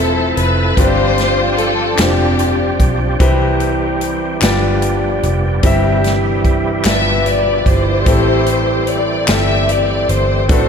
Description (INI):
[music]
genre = slow gospel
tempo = 49 BPM (dotted quarters)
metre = 6/8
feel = straight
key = unclear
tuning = A4 = 439 Hz
[part]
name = dark studio string section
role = melody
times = 0.0-3.2, 6.9-10.7 s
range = C4 to E5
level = -17 LUFS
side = left 2 dB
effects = none
[part]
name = warm grand piano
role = accompaniment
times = 0.0-10.7 s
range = G2 to E5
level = -19 LUFS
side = left 3 dB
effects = none
[part]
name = overdriven tonewheel organ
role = sustained chords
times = 0.0-10.7 s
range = B2 to A4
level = -20 LUFS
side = right 4 dB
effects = slow rotary speaker, chorus vibrato
[part]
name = vintage muted fingered electric bass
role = bass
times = 0.0-10.7 s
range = E1 to C2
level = -18 LUFS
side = right 1 dB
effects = none
[part]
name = swinging big-band drum kit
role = drums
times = 0.4-10.7 s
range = hi-hat, kick drum, snare drum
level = -18 LUFS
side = equal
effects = none
[part]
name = group handclap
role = percussion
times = 2.0-9.7 s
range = none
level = -25 LUFS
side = left 3 dB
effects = none
[sound]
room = moderate concert hall reverb, RT60 2.5 s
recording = none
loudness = -12 LUFS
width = side -6 dB against mid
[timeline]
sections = 0.0-10.7 A section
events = none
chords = 0.0 Fmaj7; 0.8 G7sus4; 3.2 Cmaj7; 4.4 G7; 5.6 C/G; 6.8 G7; 8.1 Am7